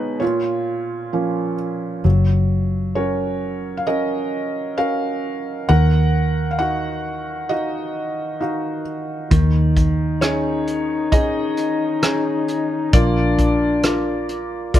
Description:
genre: acoustic folk-pop ballad.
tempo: 66 BPM.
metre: 4/4.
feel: straight.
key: unclear.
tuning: A4 = 440 Hz.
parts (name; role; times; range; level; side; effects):
felt-muted upright piano; melody; 0.0-14.8 s; Bb2 to Gb5; -21 LUFS; right 2 dB; none.
vintage muted fingered electric bass; bass; 2.0-14.8 s; Gb1 to Eb2; -19 LUFS; left 1 dB; none.
mellow French horn; second line; 9.3-14.8 s; D4 to F4; -22 LUFS; left 4 dB; none.
soft brush drum kit; drums; 9.3-14.8 s; hi-hat, kick drum, rim click; -18 LUFS; equal; none.
room: little or no reverb.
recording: none.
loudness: -18 LUFS.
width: side -12 dB against mid.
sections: 0.0-2.0 A section; 2.0-14.8 B section.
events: none.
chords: 0.2 Bbm; 2.0 Gb; 5.7 Ebmadd9; 12.9 Bb.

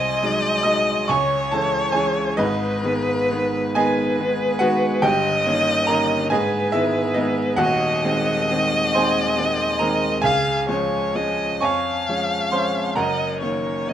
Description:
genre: classical, romantic duo for violin and grand piano.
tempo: 42-48 BPM (dotted quarters).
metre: 6/8.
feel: rubato.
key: Db major from 7.6 s.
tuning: A4 = 440 Hz.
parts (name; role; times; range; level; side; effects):
dark violin; melody; 0.0-13.9 s; B4 to F5; -22 LUFS; left 1 dB; none.
bright grand piano; accompaniment; 0.0-13.9 s; Eb1 to D#6; -20 LUFS; right 1 dB; none.
room: moderate recital hall reverb, RT60 1.7 s.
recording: close, detailed microphones.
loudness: -18 LUFS.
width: side -10 dB against mid.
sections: 0.0-13.9 A section.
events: none.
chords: 0.0 G#7/B#; 1.1 C#m; 2.4 G#m; 5.1 D#7/G; 6.3 G#m; 7.6 Ab7/Eb; 10.2 Db; 11.6 Db/F; 13.0 Ebm7/Gb.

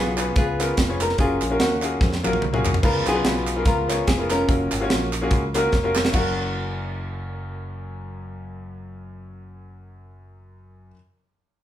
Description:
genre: uptempo gospel.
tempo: 145 BPM.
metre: 4/4.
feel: swing 57% on 8ths.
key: F# major.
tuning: A4 = 439 Hz.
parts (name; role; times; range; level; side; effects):
flamenco guitar; melody; 0.0-10.9 s; A#3 to B4; -25 LUFS; left 1 dB; none.
clear baby grand piano; accompaniment; 0.0-10.9 s; F#2 to E#5; -26 LUFS; left 1 dB; none.
fingered electric bass; bass; 0.0-10.9 s; E#1 to E#2; -29 LUFS; equal; none.
tight funk drum kit; drums; 0.2-6.3 s; crash cymbal, hi-hat, kick drum, snare drum, toms; -23 LUFS; equal; none.
group handclap; percussion; 0.2-6.4 s; none; -33 LUFS; right 4 dB; none.
room: moderate large studio reverb, RT60 0.9 s.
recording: band playing live in one room.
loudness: -19 LUFS.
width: side -12 dB against mid.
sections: 0.0-2.8 A section; 2.8-6.1 B section; 6.1-9.5 C section.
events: drum fill 2.0-2.8, 5.7-6.1.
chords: 0.0 C#7; 1.2 F#maj7; 2.8 C#7; 4.5 F#maj7.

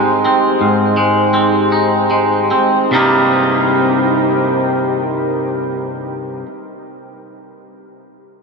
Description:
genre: rock.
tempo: 48-57 BPM (dotted quarters).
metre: 6/8.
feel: straight.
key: C minor.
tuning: A4 = 440 Hz.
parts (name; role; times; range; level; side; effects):
deep dark ambient pad; sustained chords; 0.0-6.4 s; Eb4 to G5; -18 LUFS; right 2 dB; chorus, built-in reverb.
twangy electric guitar; arpeggios; 0.0-6.5 s; C2 to Eb4; -14 LUFS; equal; spring reverb, slapback echo.
room: wet huge ambient reverb, RT60 6.5 s.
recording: none.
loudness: -12 LUFS.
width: side -4 dB against mid.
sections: 0.0-2.9 A section; 2.9-8.0 B section.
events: slowing down 0.0-2.9.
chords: 0.0 Abmaj7; 2.9 Cm7.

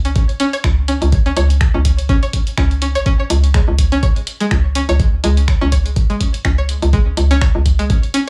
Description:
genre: minimal techno.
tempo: 124 BPM.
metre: 4/4.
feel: swing 56% on 16ths.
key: unclear.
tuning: A4 = 439 Hz.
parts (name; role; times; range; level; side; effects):
hollow knocking FM bass; bass; 0.0-8.0 s; G#1 to C#2; -18 LUFS; equal; tube saturation, sidechain pumping.
punchy analog drum machine; drums; 0.0-8.2 s; finger snaps, hi-hat; -28 LUFS; equal; none.
string-like resonator pluck; riff; 0.1-8.2 s; G#3 to C#5; -23 LUFS; equal; chorus, sidechain pumping, tape echo.
electronic kick drum; drums; 0.2-8.0 s; none; -17 LUFS; equal; none.
room: little or no reverb.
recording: studio ambience.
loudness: -15 LUFS.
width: mono.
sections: 0.0-8.3 A section.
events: none.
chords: 0.0 C#5.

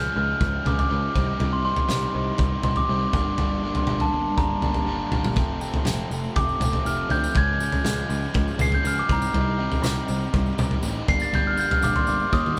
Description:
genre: indie rock.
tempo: 121 BPM.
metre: 4/4.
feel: straight.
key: unclear.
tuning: A4 = 442 Hz.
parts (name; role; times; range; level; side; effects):
glockenspiel with rubber mallets; melody; 0.0-12.6 s; A5 to C7; -28 LUFS; equal; none.
biting overdriven guitar; riff; 0.0-12.6 s; F2 to Eb4; -36 LUFS; equal; none.
overdriven electric guitar; riff; 0.0-12.6 s; F2 to Eb4; -34 LUFS; equal; none.
picked electric bass; bass; 0.0-12.5 s; F1 to Eb2; -30 LUFS; equal; none.
loose indie drum kit; drums; 0.4-12.6 s; kick drum, snare drum, toms; -28 LUFS; equal; none.
tambourine; percussion; 5.6-12.6 s; none; -44 LUFS; equal; none.
room: moderate studio reverb, RT60 0.9 s.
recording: band playing live in one room.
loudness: -23 LUFS.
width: mono.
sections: 0.0-12.6 A section.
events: glockenspiel solo 0.0-12.6; drum fill 12.3.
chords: 0.0 Db; 1.2 Cm; 3.1 Gm; 5.4 F6; 7.4 Db; 9.1 Cm7; 11.1 Gm.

